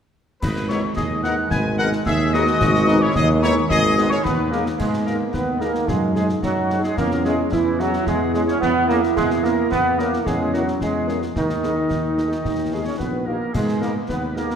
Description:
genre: military-style march for wind band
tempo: 110 BPM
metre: 2/4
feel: straight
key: G# minor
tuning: A4 = 445 Hz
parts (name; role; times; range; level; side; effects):
- mellow trumpet section; melody; 0.4-14.5 s; A#4 to G#5; -26 LUFS; equal; none
- mellow hollow wooden piccolo; second line; 0.4-4.7 s; B5 to G#6; -25 LUFS; left 4 dB; none
- warm woodwind section; second line; 0.4-14.6 s; D#4 to C#5; -29 LUFS; left 2 dB; none
- warm trombone section; sustained chords; 0.4-14.6 s; D#3 to C#4; -24 LUFS; right 1 dB; none
- mellow tuba; bass; 0.4-14.5 s; G#1 to G#2; -23 LUFS; right 1 dB; none
- concert snare drum, clash cymbals and concert bass drum; drums; 0.4-14.6 s; none; -29 LUFS; left 1 dB; none
- mellow French horn section; accompaniment; 0.7-14.5 s; G#3 to A#4; -29 LUFS; left 4 dB; none
- warm euphonium; second line; 4.8-14.6 s; B3 to E4; -26 LUFS; right 4 dB; none
room: wet concert hall reverb, RT60 2.0 s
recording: none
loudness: -18 LUFS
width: side -7 dB against mid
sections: 0.4-4.8 A section; 4.8-14.6 B section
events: none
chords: 0.4 G#m; 5.9 G#7(no3)/F#; 7.0 C#m/E; 11.4 G#5/D#; 12.4 D#; 13.5 G#m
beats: | 0.42 0.97 | 1.51 2.06 | 2.61 3.15 | 3.70 4.24 | 4.79 5.34 | 5.88 6.43 | 6.98 7.52 | 8.07 8.62 | 9.16 9.71 | 10.26 10.81 | 11.36 11.90 | 12.45 13.00 | 13.54 14.09

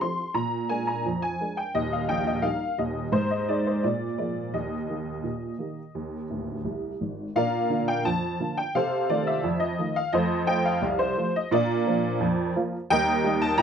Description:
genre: ragtime piano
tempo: 86 BPM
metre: 2/4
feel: straight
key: Eb major, Bb major from 7.3 s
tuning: A4 = 440 Hz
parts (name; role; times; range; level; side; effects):
- honky-tonk upright piano; solo; 0.0-13.6 s; D1 to C6; -24 LUFS; equal; none
room: light reverb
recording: close, detailed microphones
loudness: -24 LUFS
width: side -7 dB against mid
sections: 0.0-7.3 A section; 7.3-13.6 B section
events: honky-tonk piano fill 6.3-7.3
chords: 0.4 Bb7; 1.7 Eb; 3.1 Ab5; 3.8 Bb7; 4.5 Eb; 7.3 Bb; 8.7 F7/C; 10.1 F; 11.5 Bb; 12.9 Eb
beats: | 0.36 1.05 | 1.75 2.44 | 3.13 3.83 | 4.53 5.23 | 5.94 6.64 | 7.34 8.04 | 8.74 9.43 | 10.13 10.83 | 11.52 12.21 | 12.91 13.60

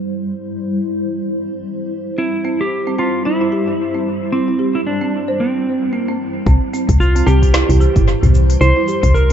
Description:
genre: organic downtempo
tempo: 112 BPM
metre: 4/4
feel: swing 58% on 16ths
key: C major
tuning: A4 = 440 Hz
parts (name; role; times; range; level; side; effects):
- granular cloud pad; sustained chords; 0.0-9.3 s; E3 to C5; -22 LUFS; left 1 dB; built-in reverb, sidechain pumping
- clean lap steel guitar; melody; 2.2-9.3 s; C4 to C5; -19 LUFS; equal; dub echo
- folk marimba with soft mallets; arpeggios; 2.2-9.3 s; C4 to C5; -21 LUFS; right 4 dB; dub echo
- woody FM bass; bass; 6.5-9.3 s; G1 to C2; -13 LUFS; equal; none
- afro-pop drum kit; drums; 6.5-9.3 s; hi-hat, shaker, snare drum, toms; -21 LUFS; right 3 dB; tape echo
- electronic kick drum; drums; 6.5-9.1 s; none; -16 LUFS; equal; none
- udu; percussion; 6.9-9.1 s; none; -20 LUFS; left 1 dB; none
room: light reverb, digital ambience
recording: echo-heavy mix, nothing above 7.8 kHz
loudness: -14 LUFS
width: side -9 dB against mid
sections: 0.0-6.5 A section; 6.5-9.3 B section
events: filter sweep on ambient pad 0.0-6.5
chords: 0.0 C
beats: | 0.04 0.57 1.11 1.65 | 2.18 2.72 3.25 3.79 | 4.32 4.86 5.39 5.93 | 6.47 7.00 7.54 8.07 | 8.61 9.14

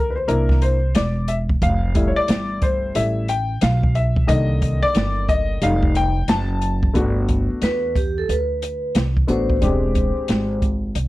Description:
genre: hip hop, jazz-hop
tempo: 90 BPM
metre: 4/4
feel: swing 63% on 16ths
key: G major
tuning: A4 = 441 Hz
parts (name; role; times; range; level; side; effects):
- dark grand piano; accompaniment; 0.0-10.6 s; D3 to A5; -22 LUFS; left 2 dB; none
- upright bass; bass; 0.0-11.1 s; E1 to E2; -21 LUFS; equal; none
- open jazz drum kit; drums; 0.3-11.1 s; hi-hat, kick drum, snare drum; -21 LUFS; equal; none
- vibraphone with soft mallets; melody; 7.6-10.6 s; G4 to C5; -24 LUFS; right 1 dB; none
room: little or no reverb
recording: dry, close 1970s-style studio recording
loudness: -17 LUFS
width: side -17 dB against mid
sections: 0.0-7.0 A section; 7.0-11.1 B section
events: grand piano solo 0.0-7.0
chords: 0.3 C7; 1.6 Fmaj7; 4.3 Cm7; 5.6 F9; 7.0 Gmaj9; 9.6 E7alt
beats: 0.28 0.95 | 1.62 2.28 2.95 3.62 | 4.28 4.95 5.62 6.28 | 6.95 7.62 8.28 8.95 | 9.62 10.28 10.95

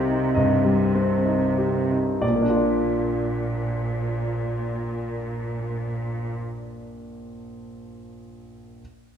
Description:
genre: cinematic, emotional film score for orchestra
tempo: 60-72 BPM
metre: 4/4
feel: rubato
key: Bb major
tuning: A4 = 440 Hz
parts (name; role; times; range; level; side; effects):
- clear grand piano; accompaniment; 0.0-8.8 s; Bb1 to F5; -24 LUFS; equal; none
- rich studio cello section; bass; 0.0-6.4 s; Bb2 to C3; -26 LUFS; right 1 dB; none
room: wet scoring stage reverb, RT60 1.6 s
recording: minimal, uncompressed stereo recording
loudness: -21 LUFS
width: side -8 dB against mid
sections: 0.0-2.2 A section; 2.2-6.0 B section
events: slowing down 0.0-2.2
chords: 0.0 Cm; 2.2 Bb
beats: 0.35 1.25 | 2.22 3.15 4.07 5.01

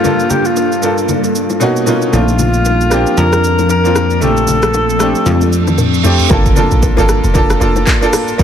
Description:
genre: amapiano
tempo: 115 BPM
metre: 4/4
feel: swing 58% on 16ths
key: G minor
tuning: A4 = 442 Hz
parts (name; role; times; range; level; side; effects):
- breathy alto saxophone; melody; 0.0-5.8 s; F4 to Bb4; -16 LUFS; left 2 dB; ping-pong delay
- bright baby grand piano; accompaniment; 0.0-8.4 s; G2 to C5; -16 LUFS; right 1 dB; none
- ethereal airy pad; sustained chords; 0.0-6.3 s; F3 to A4; -19 LUFS; left 1 dB; ensemble chorus, built-in reverb, sidechain pumping
- afro-pop drum kit; drums; 0.0-8.4 s; handclaps, hi-hat, kick drum, rim click, shaker, toms; -17 LUFS; equal; none
- congas and bongos; percussion; 0.0-8.4 s; none; -22 LUFS; left 6 dB; none
- downlifter, reverse cymbal and impact; sound effects; 0.0-8.4 s; none; -23 LUFS; right 2 dB; none
- plucky analog bass; bass; 2.1-6.2 s; Bb1 to F2; -14 LUFS; equal; none
- deep log drum bass; bass; 6.3-8.4 s; F1 to Bb1; -14 LUFS; equal; none
room: light reverb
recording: none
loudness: -10 LUFS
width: side -8 dB against mid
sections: 0.0-6.3 A section; 6.3-8.4 B section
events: drum fill 5.3-6.3; reverse cymbal 5.6-6.3; drop 6.3-8.4; impact 6.3-8.4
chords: 0.0 Gm7; 1.6 Bmaj9; 2.1 Bbmaj9; 6.3 Gm7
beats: | 0.04 0.57 1.09 1.61 | 2.13 2.65 3.17 3.70 | 4.22 4.74 5.26 5.78 | 6.31 6.83 7.35 7.87 | 8.39

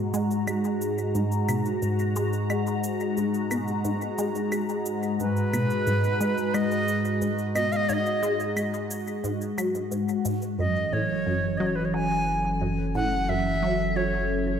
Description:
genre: ambient, sequencer-driven space music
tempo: 89 BPM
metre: 4/4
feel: straight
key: G# minor, F# dorian from 10.6 s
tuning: A4 = 438 Hz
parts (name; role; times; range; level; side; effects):
- phased analog pad; sustained chords; 0.0-14.6 s; G#2 to A#5; -27 LUFS; equal; phaser, chorus
- resonant blip pluck; riff; 0.0-14.2 s; F#2 to G#3; -30 LUFS; equal; phaser, cassette tape, ping-pong delay
- cabasa and claves; percussion; 0.1-10.6 s; none; -37 LUFS; equal; overdrive, ping-pong delay
- bright reedy wooden flute; melody; 5.2-14.6 s; B4 to G#5; -27 LUFS; right 1 dB; ping-pong delay
- warm sub bass; bass; 10.6-14.6 s; F#1; -33 LUFS; equal; none
room: wet lush hall reverb, RT60 2.6 s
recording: none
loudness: -24 LUFS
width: side -8 dB against mid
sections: 0.0-10.6 A section; 10.6-14.6 B section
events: filter sweep on synth arpeggio sound 0.0-10.6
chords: 0.0 G#7(no3); 10.6 F#m7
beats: 0.48 1.15 1.83 | 2.50 3.17 3.85 4.52 | 5.20 5.87 6.54 7.22 | 7.89 8.57 9.24 9.92 | 10.59 11.26 11.94 12.61 | 13.29 13.96

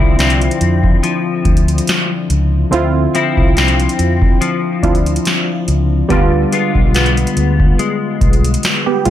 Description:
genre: contemporary R&B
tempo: 71 BPM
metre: 4/4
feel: swing 54% on 16ths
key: D minor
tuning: A4 = 440 Hz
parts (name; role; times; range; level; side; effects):
- warm analog keys; accompaniment; 0.0-9.1 s; D3 to G4; -19 LUFS; right 4 dB; chorus
- clean electric guitar; arpeggios; 0.0-9.1 s; D3 to F4; -18 LUFS; left 7 dB; ensemble chorus, tape echo
- vintage muted fingered electric bass; bass; 0.0-9.1 s; B1 to F2; -15 LUFS; equal; none
- booming analog drum machine; drums; 0.2-9.1 s; hi-hat, kick drum, snare drum; -15 LUFS; equal; none
room: digital ambience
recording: none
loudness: -12 LUFS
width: side -12 dB against mid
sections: 0.0-9.1 A section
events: none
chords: 0.0 Dm9; 6.1 G7b9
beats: 0.19 1.03 1.88 | 2.72 3.57 4.41 5.26 | 6.10 6.95 7.79 8.64

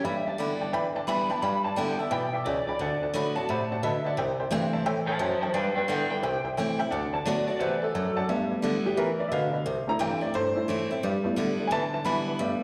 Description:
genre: rockabilly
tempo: 175 BPM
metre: 4/4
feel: swing 64% on 8ths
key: G major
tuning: A4 = 441 Hz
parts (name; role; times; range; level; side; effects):
- electric guitar through a small old amp; melody; 0.0-8.3 s; A4 to B5; -33 LUFS; equal; subtle chorus, plate reverb, slapback echo, analog delay
- picked steel-string acoustic guitar; accompaniment; 0.0-12.6 s; G2 to F#4; -34 LUFS; equal; plate reverb
- warm upright piano; accompaniment; 0.0-12.6 s; A3 to D6; -33 LUFS; equal; plate reverb
- warm bassoon; bass; 0.0-12.5 s; C2 to E3; -34 LUFS; equal; none
room: moderate club reverb, RT60 0.8 s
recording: live gig heard through the venue's PA, recital hall reverb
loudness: -28 LUFS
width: mono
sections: 0.0-8.3 A section; 8.3-12.6 B section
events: upright piano solo 8.3-12.6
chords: 0.0 G6; 2.8 D6; 4.2 C6; 5.5 G6; 6.2 C6; 6.9 D6; 8.3 G6; 9.7 C6; 11.0 G6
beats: | 0.04 0.38 0.73 1.07 | 1.42 1.76 2.11 2.45 | 2.79 3.14 3.48 3.83 | 4.17 4.51 4.86 5.20 | 5.54 5.89 6.23 6.58 | 6.92 7.26 7.60 7.95 | 8.29 8.63 8.97 9.32 | 9.66 10.00 10.34 10.69 | 11.03 11.37 11.71 12.05 | 12.39

